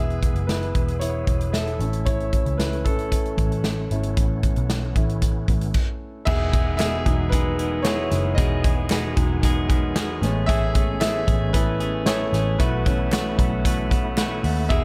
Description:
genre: piano-driven pop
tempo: 114 BPM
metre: 4/4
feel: straight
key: E major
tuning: A4 = 436 Hz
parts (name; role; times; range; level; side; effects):
- warm grand piano; accompaniment; 0.0-14.8 s; E3 to F#5; -29 LUFS; equal; none
- bright tonewheel organ; sustained chords; 0.0-14.8 s; E3 to G#4; -38 LUFS; equal; none
- vintage muted picked electric bass; bass; 0.0-14.8 s; E1 to D#2; -28 LUFS; equal; none
- natural country drum kit; drums; 0.1-14.8 s; crash cymbal, hi-hat, kick drum, snare drum; -25 LUFS; equal; none
- direct-recorded clean electric guitar; riff; 6.3-14.8 s; E2 to G#4; -31 LUFS; equal; spring reverb
- group handclap; percussion; 6.8-14.3 s; none; -39 LUFS; equal; none
room: light reverb, small room ambience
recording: none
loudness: -22 LUFS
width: mono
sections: 0.0-6.3 A section; 6.3-14.8 B section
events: grand piano solo 0.0-6.3, 6.3-14.8; stop 5.8-6.3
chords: 0.0 E; 1.8 A; 6.3 Emaj7; 10.2 Amaj7; 12.6 B7sus4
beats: 0.49 1.01 1.54 | 2.07 2.59 3.12 3.65 | 4.17 4.70 5.23 5.75 | 6.28 6.80 7.33 7.86 | 8.38 8.91 9.44 9.96 | 10.49 11.02 11.54 12.07 | 12.60 13.12 13.65 14.17 | 14.70

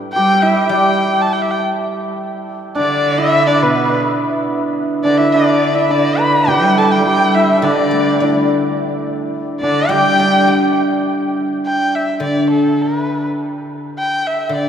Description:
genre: chinese traditional, Chinese chamber ensemble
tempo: 104 BPM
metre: 2/4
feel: straight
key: G gong mode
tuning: A4 = 436 Hz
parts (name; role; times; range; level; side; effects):
- hammered dulcimer; second line; 0.0-13.4 s; B3 to B4; -19 LUFS; right 3 dB; none
- guzheng; accompaniment; 0.0-2.5, 7.6-14.7 s; D3 to G4; -20 LUFS; left 2 dB; none
- warm erhu; melody; 0.1-14.7 s; A4 to B5; -18 LUFS; left 1 dB; none
- bright cello; second line; 0.1-10.8 s; B2 to G3; -21 LUFS; right 3 dB; none
- bright reedy dizi; second line; 0.2-10.8 s; B4 to A5; -21 LUFS; left 4 dB; none
room: wet cathedral reverb, RT60 5.2 s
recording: recorded in a church or concert hall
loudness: -13 LUFS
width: side -8 dB against mid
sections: 0.0-1.9 A section; 1.9-11.1 B section; 11.1-14.7 A section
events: none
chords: none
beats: 0.14 | 0.72 1.30 | 1.89 2.47 | 3.04 3.62 | 4.19 4.75 | 5.33 5.90 | 6.48 7.06 | 7.63 8.20 | 8.77 9.33 | 9.90 10.48 | 11.07 11.65 | 12.23 12.81 | 13.38 13.96 | 14.54

